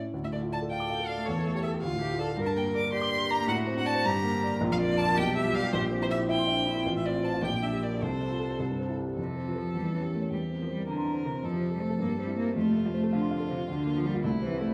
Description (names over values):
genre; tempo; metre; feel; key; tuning
quick classical-period movement for piano trio; 107 BPM (dotted quarters); 6/8; straight; D minor, F major from 4.6 s; A4 = 441 Hz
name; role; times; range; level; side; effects
dark grand piano; accompaniment; 0.0-14.7 s; A1 to D6; -32 LUFS; equal; none
clear violin; melody; 0.2-14.7 s; E4 to D6; -35 LUFS; equal; none
rich cello; second line; 0.7-14.7 s; C3 to Bb4; -34 LUFS; equal; none
room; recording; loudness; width
wet recital hall reverb, RT60 1.7 s; none; -29 LUFS; mono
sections
0.1-9.2 A section; 9.2-14.7 B section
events
none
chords
0.1 Dm; 1.3 A7/E; 1.8 Dm; 2.4 Gm; 3.5 D7/A; 4.1 Gm; 4.6 Bb; 5.2 G7/B; 5.7 C7/Bb; 6.9 F/A; 7.4 Gm/Bb; 8.0 F/C; 8.6 C; 9.2 F; 9.7 Edim7; 10.3 C7/E; 11.4 F; 12.0 C/G; 12.6 F; 13.7 Bb/D; 14.2 Am/C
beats
| 0.13 0.70 | 1.26 1.83 | 2.38 2.94 | 3.50 4.06 | 4.61 5.17 | 5.73 6.29 | 6.85 7.43 | 8.01 8.59 | 9.18 9.75 | 10.31 10.88 | 11.44 12.00 | 12.56 13.11 | 13.67 14.23